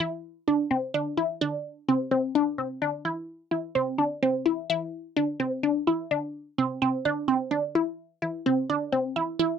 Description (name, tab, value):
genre	progressive instrumental, progressive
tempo	128 BPM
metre	5/4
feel	straight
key	unclear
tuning	A4 = 441 Hz
part	resonant blip pluck	solo	0.0-9.6 s	C4 to E4	-24 LUFS	equal	phaser
room	moderate booth ambience, RT60 0.2 s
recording	dry, close 1970s-style studio recording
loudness	-25 LUFS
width	side -7 dB against mid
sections	0.0-9.6 A section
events	none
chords	none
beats	| 0.00 0.47 0.94 1.41 1.88 | 2.35 2.82 3.29 3.76 4.23 | 4.70 5.17 5.64 6.11 6.58 | 7.05 7.52 7.99 8.46 8.93 | 9.40